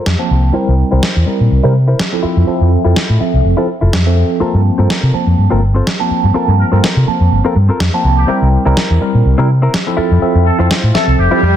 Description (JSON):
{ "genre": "filtered disco house", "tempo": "124 BPM", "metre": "4/4", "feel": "swing 55% on 16ths", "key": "G dorian", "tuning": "A4 = 441 Hz", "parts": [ { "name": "direct-recorded clean electric guitar", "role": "riff", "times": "0.0-11.4 s", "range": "C4 to C5", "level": "-21 LUFS", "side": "left 3 dB", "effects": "low-pass filter" }, { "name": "hollow-body short-scale fingered electric bass", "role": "bass", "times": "0.1-11.6 s", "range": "F1 to C3", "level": "-11 LUFS", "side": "equal", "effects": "tube saturation, low-pass filter" }, { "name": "electronic snare drum", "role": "drums", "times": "0.1-11.1 s", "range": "none", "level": "-19 LUFS", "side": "equal", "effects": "none" }, { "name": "tine electric piano", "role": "accompaniment", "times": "0.2-11.4 s", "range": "F3 to A5", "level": "-16 LUFS", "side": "right 1 dB", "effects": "medium stereo tremolo, phaser, low-pass filter" }, { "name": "muted trumpet section", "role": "melody", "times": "6.6-11.6 s", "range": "G4 to Bb4", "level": "-20 LUFS", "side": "equal", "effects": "vintage 12-bit sampler grit, low-pass filter" }, { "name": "swell", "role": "sound effects", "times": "11.3-11.6 s", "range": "none", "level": "-16 LUFS", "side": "equal", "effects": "none" } ], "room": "light reverb", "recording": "dense, heavily limited modern master", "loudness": "-10 LUFS", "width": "side -10 dB against mid", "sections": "0.0-11.6 A section", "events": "filter sweep 0.0-11.6; swell 11.3", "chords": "0.0 Gm11 (rootless); 0.5 C7; 2.2 Fmaj7; 4.4 Gm11; 8.3 C7; 10.0 Fmaj7" }